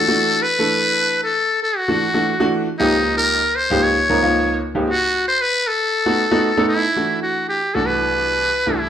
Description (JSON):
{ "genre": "jazz", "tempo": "115 BPM", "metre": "4/4", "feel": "straight", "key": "unclear", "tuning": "A4 = 440 Hz", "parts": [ { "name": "trumpet with metal mute", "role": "melody", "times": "0.0-8.9 s", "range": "D#4 to C#5", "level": "-17 LUFS", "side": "left 1 dB", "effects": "none" }, { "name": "bright grand piano", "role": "accompaniment", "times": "0.0-8.9 s", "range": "C2 to Bb4", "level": "-19 LUFS", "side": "right 1 dB", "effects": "none" } ], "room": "moderate large studio reverb, RT60 1.1 s", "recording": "band playing live in one room", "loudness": "-16 LUFS", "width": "side -9 dB against mid", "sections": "0.0-7.0 A section; 7.0-8.9 B section", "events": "none", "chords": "0.0 Dadd9; 2.8 C#add9; 4.9 B7; 7.0 Em11; 7.7 Cmaj7" }